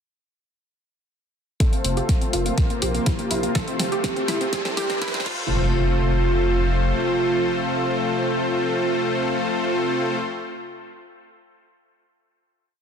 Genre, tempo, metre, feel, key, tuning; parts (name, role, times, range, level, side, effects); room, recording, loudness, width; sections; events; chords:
progressive house; 123 BPM; 4/4; straight; F major; A4 = 443 Hz
warm velvety synth lead; melody; 1.6-10.2 s; F4 to C5; -27 LUFS; right 2 dB; chorus, tape echo
lush unison pad; sustained chords; 1.6-10.2 s; C3 to F4; -30 LUFS; equal; chorus, sidechain pumping
wide unison pluck; arpeggios; 1.6-10.2 s; Bb3 to A4; -30 LUFS; right 1 dB; sidechain pumping, tape echo
soft supersaw; stabs; 1.6-10.2 s; A3 to C5; -25 LUFS; left 2 dB; sidechain pumping, low-pass filter, tape echo
deep house drum kit; drums; 1.6-5.4 s; crash cymbal, hi-hat, snare drum; -28 LUFS; equal
electronic kick drum; drums; 1.6-5.4 s; -22 LUFS; equal
riser and impact; sound effects; 3.2-10.2 s; -33 LUFS; right 1 dB
saturated sub bass; bass; 1.8-6.9 s; F1 to C2; -23 LUFS; equal; sidechain pumping
light reverb; dense, heavily limited modern master, high-pass filter; -20 LUFS; side -7 dB against mid
1.6-5.5 build; 5.5-9.4 final hit
build-up 1.6-5.5; drum fill 1.6-5.5; filter sweep on synth pluck 1.6-5.5; filter sweep on supersaw synth 1.6-5.5; filter sweep on soft synth lead 1.6-5.5; filter sweep 1.6-5.5; riser 3.2-5.5
1.6 F; 2.6 Bbsus2; 3.6 F; 4.5 Cadd9; 5.3 F